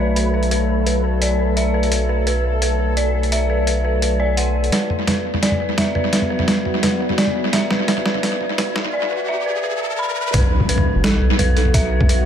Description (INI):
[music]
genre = half-time drum and bass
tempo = 171 BPM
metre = 4/4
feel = half-time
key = unclear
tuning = A4 = 440 Hz
[part]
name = bowed-like drone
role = sustained chords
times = 0.0-12.3 s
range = F#3 to A4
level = -24 LUFS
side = equal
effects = built-in reverb, sidechain pumping
[part]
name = dark detuned synth bell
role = arpeggios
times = 0.0-12.3 s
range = A4 to B5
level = -23 LUFS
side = left 1 dB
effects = chorus, vintage 12-bit sampler grit, low-pass filter, analog delay
[part]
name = saturated sub bass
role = bass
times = 0.0-12.3 s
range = F#1 to B1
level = -20 LUFS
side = equal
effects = high-pass filter
[part]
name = flickering grainy texture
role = texture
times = 0.0-4.7 s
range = B4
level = -33 LUFS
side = right 2 dB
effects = none
[part]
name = boom bap sampler-style drum kit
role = drums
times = 0.2-12.2 s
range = hi-hat, snare drum, toms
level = -20 LUFS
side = right 1 dB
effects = overdrive, tape echo
[part]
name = riser and impact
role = sound effects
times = 7.4-11.7 s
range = none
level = -26 LUFS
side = equal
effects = none
[part]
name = electronic kick drum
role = drums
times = 10.3-12.1 s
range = none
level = -17 LUFS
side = equal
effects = overdrive
[sound]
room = light reverb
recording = echo-heavy mix, high-pass filter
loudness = -16 LUFS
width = side -8 dB against mid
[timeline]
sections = 0.0-4.7 A section; 4.7-10.3 B section; 10.3-12.3 C section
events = filter sweep on synth drone 0.0-4.7, 4.7-10.3; build-up 4.7-10.3; drum fill 4.7-8.9; riser 7.4-10.3; drop 10.3-12.3; impact 10.3-11.7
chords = 0.0 B5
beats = 0.16 | 0.51 0.86 1.22 1.57 | 1.92 2.27 2.62 2.97 | 3.32 3.67 4.02 4.37 | 4.72 5.08 5.43 5.78 | 6.13 6.48 6.83 7.18 | 7.53 7.88 8.23 8.58 | 8.93 9.29 9.64 9.99 | 10.34 10.69 11.04 11.39 | 11.74 12.09